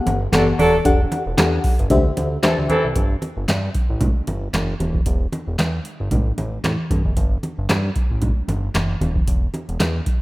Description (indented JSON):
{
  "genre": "early-eighties boogie funk",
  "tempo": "114 BPM",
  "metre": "4/4",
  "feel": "swing 56% on 16ths",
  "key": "G major",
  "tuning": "A4 = 437 Hz",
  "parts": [
    { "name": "FM electric piano with tremolo", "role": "accompaniment", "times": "0.0-2.8 s", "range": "B3 to F#5", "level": "-21 LUFS", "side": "left 2 dB", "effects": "none" },
    { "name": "fat analog bass", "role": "bass", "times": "0.1-10.0 s", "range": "Eb1 to A2", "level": "-23 LUFS", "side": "equal", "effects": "none" },
    { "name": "booming analog drum machine", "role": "drums", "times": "0.1-10.2 s", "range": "handclaps, hi-hat, kick drum, snare drum", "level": "-21 LUFS", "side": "equal", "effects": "none" },
    { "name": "congas", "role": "percussion", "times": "0.1-9.9 s", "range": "none", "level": "-25 LUFS", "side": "right 1 dB", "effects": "none" },
    { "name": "warm horn section", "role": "second line", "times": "0.3-2.9 s", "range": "E3 to A4", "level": "-20 LUFS", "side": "right 1 dB", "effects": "none" }
  ],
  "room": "light reverb",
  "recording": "rough home demo mix",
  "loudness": "-17 LUFS",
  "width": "side -19 dB against mid",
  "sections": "0.0-3.0 A section; 3.0-10.2 B section",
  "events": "none",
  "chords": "0.0 Gmaj9; 0.9 Em11; 1.9 D9sus4; 3.0 Gsus2; 5.1 Em; 6.1 F#m; 7.2 Gsus2; 9.3 N.C.",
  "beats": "0.33 | 0.85 1.38 1.91 2.43 | 2.96 3.48 4.01 4.54 | 5.06 5.59 6.12 6.64 | 7.17 7.70 8.22 8.75 | 9.27 9.80"
}